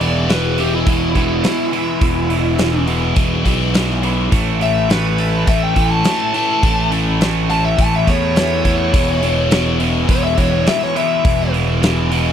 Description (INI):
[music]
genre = classic rock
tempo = 104 BPM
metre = 4/4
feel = straight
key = E major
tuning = A4 = 440 Hz
[part]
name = dark smooth lead guitar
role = melody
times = 0.0-11.5 s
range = E4 to A5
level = -20 LUFS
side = left 2 dB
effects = overdrive, tape echo
[part]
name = crunchy overdriven guitar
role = riff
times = 0.0-12.3 s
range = E2 to E4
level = -23 LUFS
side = left 13 dB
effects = phaser
[part]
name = crunchy overdriven guitar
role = riff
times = 0.0-12.3 s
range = E2 to A3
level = -21 LUFS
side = right 15 dB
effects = none
[part]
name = fuzz picked electric bass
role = bass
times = 0.0-12.3 s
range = E1 to E2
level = -18 LUFS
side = equal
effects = overdrive
[part]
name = huge arena drum kit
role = drums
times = 0.0-12.2 s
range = hi-hat, kick drum, snare drum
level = -19 LUFS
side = equal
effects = none
[sound]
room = little or no reverb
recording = dry, close 1970s-style studio recording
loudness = -13 LUFS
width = side -9 dB against mid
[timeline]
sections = 0.0-12.3 A section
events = lead electric guitar solo 0.0-12.3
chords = 0.0 E; 4.3 A; 8.9 E